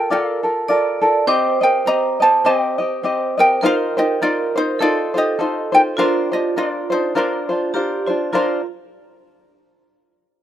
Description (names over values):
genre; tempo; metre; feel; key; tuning
Hawaiian; 102 BPM; 4/4; swing 57% on 8ths; Bb major; A4 = 440 Hz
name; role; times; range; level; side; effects
ukulele; melody; 0.0-8.7 s; D4 to Bb5; -18 LUFS; equal; none
vibraphone with hard mallets; second line; 0.0-8.6 s; F4 to D5; -22 LUFS; right 6 dB; none
tenor ukulele; accompaniment; 0.0-8.6 s; C4 to Eb5; -19 LUFS; left 2 dB; none
room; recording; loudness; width
little or no reverb; rough home demo mix; -15 LUFS; side -11 dB against mid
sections
0.0-8.3 A section; 8.3-10.4 B section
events
none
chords
0.0 Bbmaj7; 1.3 Cm; 3.6 F7sus4; 4.8 F7; 6.0 Bbadd9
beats
0.10 0.68 | 1.27 1.86 2.45 3.04 | 3.62 4.21 4.80 5.39 | 5.98 6.57 7.15 7.74 | 8.33